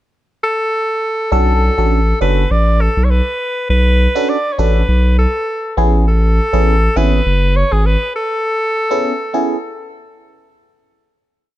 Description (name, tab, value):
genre	afrobeats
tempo	101 BPM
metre	4/4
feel	swing 55% on 16ths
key	A major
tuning	A4 = 442 Hz
part	warm alto saxophone	melody	0.4-9.9 s	G#4 to D5	-18 LUFS	equal	ping-pong delay
part	barking FM electric piano	accompaniment	1.3-9.6 s	B3 to A4	-18 LUFS	right 1 dB	phaser
part	saturated sub bass	bass	1.3-8.0 s	F#1 to B1	-13 LUFS	equal	none
room	studio reverb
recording	none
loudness	-12 LUFS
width	side -14 dB against mid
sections	0.0-1.3 pickup bar; 1.3-10.8 chorus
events	none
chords	0.0 N.C.; 1.3 Bm7; 5.8 Amaj7